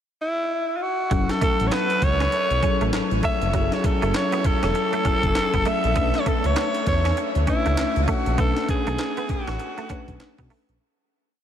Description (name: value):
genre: R&B, new jack swing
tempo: 99 BPM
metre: 4/4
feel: swing 61% on 16ths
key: F# minor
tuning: A4 = 445 Hz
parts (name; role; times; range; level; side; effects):
- breathy alto saxophone; melody; 0.2-10.2 s; E4 to E5; -24 LUFS; equal; analog delay
- bell-like tine electric piano; accompaniment; 1.1-10.8 s; F#3 to B4; -28 LUFS; left 4 dB; wide subtle chorus
- direct-recorded clean electric guitar; riff; 1.1-10.6 s; F#3 to C#4; -31 LUFS; right 3 dB; ensemble chorus
- smooth synth bass; bass; 1.1-10.8 s; E1 to B2; -25 LUFS; equal; none
- breakbeat sampler-style drum kit; drums; 1.1-10.8 s; handclaps, hi-hat, kick drum, snare drum; -26 LUFS; equal; none
- group handclap; percussion; 6.6-10.4 s; none; -45 LUFS; right 5 dB; none
room: moderate huge ambient reverb, RT60 7.6 s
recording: dreamy mix soaked in reverb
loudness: -20 LUFS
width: side -9 dB against mid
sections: 0.0-1.1 pickup bar; 1.1-10.8 verse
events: fade-out 8.4-10.8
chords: 0.0 N.C.; 1.1 F#m7; 6.0 Bm9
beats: 0.50 | 1.11 1.72 2.32 2.93 | 3.54 4.14 4.75 5.35 | 5.96 6.57 7.17 7.78 | 8.38 8.99 9.60 10.20